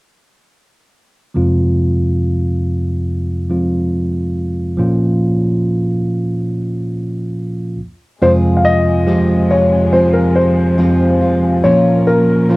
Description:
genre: pop.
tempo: 70 BPM.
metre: 4/4.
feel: straight.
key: unclear.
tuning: A4 = 441 Hz.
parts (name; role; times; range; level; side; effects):
tine electric piano; accompaniment; 1.3-12.6 s; F2 to G4; -14 LUFS; equal; cassette tape.
warm baby grand piano; melody; 8.2-12.6 s; Bb4 to F5; -15 LUFS; left 2 dB; none.
warm studio string section; sustained chords; 8.2-12.6 s; F2 to Bb4; -24 LUFS; equal; cassette tape.
picked steel-string acoustic guitar; arpeggios; 8.2-12.6 s; F2 to F4; -23 LUFS; left 2 dB; cassette tape.
room: wet studio reverb, RT60 0.6 s.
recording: home recording on cassette.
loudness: -13 LUFS.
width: side -21 dB against mid.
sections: 1.4-8.2 A section; 8.2-12.6 B section.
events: none.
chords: 1.4 Fm; 4.8 Bbm; 7.8 N.C.; 8.2 Fm; 11.6 Bbm.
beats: | 1.36 2.21 3.07 3.93 | 4.79 5.64 6.50 7.36 | 8.21 9.07 9.93 10.79 | 11.64 12.50.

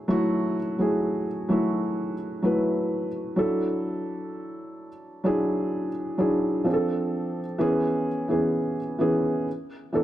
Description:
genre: R&B.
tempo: 64 BPM.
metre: 4/4.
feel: straight.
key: F# minor.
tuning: A4 = 440 Hz.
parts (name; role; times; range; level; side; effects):
felt-muted upright piano; solo; 0.0-10.0 s; E3 to B4; -24 LUFS; equal; none.
room: light reverb.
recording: dark, warm production.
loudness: -23 LUFS.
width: side -13 dB against mid.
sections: 0.0-10.0 A section.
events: none.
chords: 0.0 F#m9; 3.4 E9sus4; 6.7 Dm7; 7.6 C#m7; 9.5 E7sus4.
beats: | 0.09 1.03 1.96 2.90 | 3.84 4.78 5.71 6.65 | 7.59 8.53 9.46.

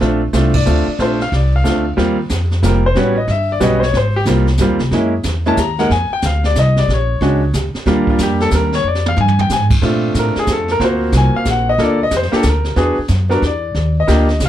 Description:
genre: jazz piano trio.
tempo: 184 BPM.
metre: 3/4.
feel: swing 64% on 8ths.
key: Eb major, Bb major from 9.8 s.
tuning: A4 = 440 Hz.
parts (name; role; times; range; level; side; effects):
clear grand piano; melody; 0.0-14.5 s; G3 to Bb5; -16 LUFS; equal; none.
upright bass; bass; 0.0-14.5 s; F1 to Bb2; -16 LUFS; equal; none.
jazz brush drum kit; drums; 0.0-14.5 s; brushed snare drum, crash cymbal, hi-hat, kick drum, ride cymbal, snare drum, toms; -21 LUFS; right 2 dB; none.
room: light reverb.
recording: dark, warm production.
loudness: -13 LUFS.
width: side -12 dB against mid.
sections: 0.0-2.0 A section; 2.0-9.8 B section; 9.8-14.5 C section.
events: band accent 0.5; drum fill 8.8-9.5; grand piano solo 9.8-14.5.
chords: 0.0 Bbmaj9; 2.0 Eb69; 3.0 A13; 3.9 Abmaj13; 4.9 Gb9; 5.9 F5; 6.9 Bb(#9); 7.9 Ebmaj9; 8.8 Fmadd9; 9.8 Bbmaj9; 10.8 D7alt; 11.8 Gm9 (rootless); 12.8 E7sus2; 13.7 Ebmaj9.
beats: | 0.01 0.34 0.67 | 0.99 1.32 1.65 | 1.97 2.30 2.63 | 2.95 3.28 3.61 | 3.94 4.26 4.59 | 4.92 5.24 5.57 | 5.90 6.22 6.55 | 6.88 7.21 7.53 | 7.86 8.19 8.51 | 8.84 9.17 9.49 | 9.82 10.15 10.48 | 10.80 11.13 11.46 | 11.79 12.11 12.44 | 12.77 13.09 13.42 | 13.75 14.08 14.40.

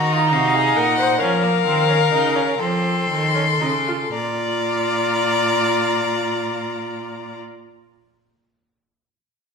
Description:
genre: classical, baroque-style fugue for string quartet.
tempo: 36-48 BPM (dotted quarters).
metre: 6/8.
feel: straight.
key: unclear.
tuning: A4 = 440 Hz.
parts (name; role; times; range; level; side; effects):
rich violin; melody; 0.0-7.4 s; F5 to C6; -22 LUFS; left 6 dB; none.
rich violin; second line; 0.0-7.4 s; F4 to D5; -22 LUFS; left 3 dB; none.
clear viola; accompaniment; 0.0-7.4 s; Bb3 to F4; -23 LUFS; right 4 dB; none.
rich cello; bass; 0.0-7.4 s; Bb2 to F3; -24 LUFS; right 2 dB; none.
room: wet recital hall reverb, RT60 1.3 s.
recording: minimal, uncompressed stereo recording.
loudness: -17 LUFS.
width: side -5 dB against mid.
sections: 0.0-4.1 A section; 4.1-7.4 B section.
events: slowing down 0.0-4.1.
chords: 0.0 Cm7b5; 1.2 Bbm; 2.6 F7; 4.1 Bb.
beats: | 1.20 2.59 | 4.14 5.79.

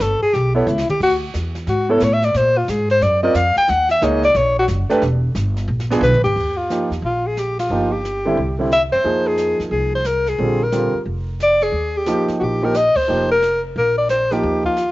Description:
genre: jazz, small-group swing and bop.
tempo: 179 BPM.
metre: 4/4.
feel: swing 64% on 8ths.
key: Eb major from 6.4 s.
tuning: A4 = 443 Hz.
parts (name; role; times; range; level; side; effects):
breathy alto saxophone; melody; 0.0-14.9 s; B3 to G5; -17 LUFS; left 1 dB; none.
upright bass; bass; 0.0-14.9 s; E1 to A#2; -22 LUFS; equal; none.
jazz brush drum kit; drums; 0.0-14.9 s; brushed snare drum, crash cymbal, hi-hat, kick drum, ride cymbal, snare drum, toms; -33 LUFS; right 1 dB; cassette tape.
warm grand piano; accompaniment; 0.5-14.7 s; D3 to D5; -20 LUFS; right 2 dB; cassette tape.
room: light reverb, studio reverb.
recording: home recording on cassette, nothing above 7.6 kHz.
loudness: -15 LUFS.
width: side -17 dB against mid.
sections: 0.0-6.4 A section; 6.4-14.9 B section.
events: alto saxophone solo 0.0-6.4; drum fill 0.7-1.0, 5.7-6.4; band accent 7.5, 12.9.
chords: 0.0 A9; 1.0 Dsus2; 2.3 A#7(no3); 3.7 D#m7; 5.0 Em; 5.7 A#7b9; 6.4 Ebadd9; 7.7 Gm7; 8.4 C; 9.0 Fm7; 10.4 Bb; 11.7 Ebadd9; 13.1 F9sus4; 13.7 Bb5.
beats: 0.00 0.33 0.67 | 1.00 1.33 1.67 2.00 | 2.34 2.67 3.01 3.35 | 3.68 4.01 4.35 4.68 | 5.02 5.35 5.69 6.02 | 6.36 6.70 7.03 7.37 | 7.70 8.04 8.37 8.71 | 9.04 9.38 9.71 10.05 | 10.39 10.72 11.06 11.39 | 11.73 12.07 12.40 12.74 | 13.07 13.41 13.75 14.08 | 14.42 14.76.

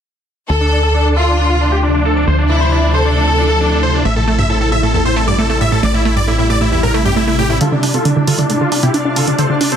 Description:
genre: uplifting trance.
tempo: 135 BPM.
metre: 4/4.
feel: straight.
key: D minor.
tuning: A4 = 441 Hz.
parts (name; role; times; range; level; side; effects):
big supersaw lead; melody; 0.5-9.8 s; D4 to E5; -17 LUFS; equal; low-pass filter, ping-pong delay.
bright studio violin section; second line; 0.5-4.0 s; E4 to A4; -18 LUFS; left 1 dB; ping-pong delay.
shimmering ambient pad; sustained chords; 1.4-9.8 s; C3 to F4; -20 LUFS; left 1 dB; chorus, built-in reverb.
solid FM bass; bass; 0.5-7.6 s; A1 to D2; -16 LUFS; equal; none.
wide unison pluck; arpeggios; 4.1-9.8 s; E2 to D4; -16 LUFS; right 2 dB; none.
electronic hi-hat; drums; 7.6-9.8 s; none; -20 LUFS; right 2 dB; none.
room: light reverb, digital ambience.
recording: dense, heavily limited modern master.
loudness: -12 LUFS.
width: side -8 dB against mid.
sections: 0.5-7.6 A section; 7.6-9.8 B section.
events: filter sweep on supersaw synth 0.5-7.6, 7.6-9.8; build-up 7.6-9.8; filter sweep on synth arpeggio sound 7.6-9.8.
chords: 0.5 Dm7; 4.1 Am7; 7.6 Dm7.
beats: | 0.50 0.94 1.39 1.83 | 2.27 2.72 3.16 3.61 | 4.05 4.50 4.94 5.39 | 5.83 6.28 6.72 7.16 | 7.61 8.05 8.50 8.94 | 9.39.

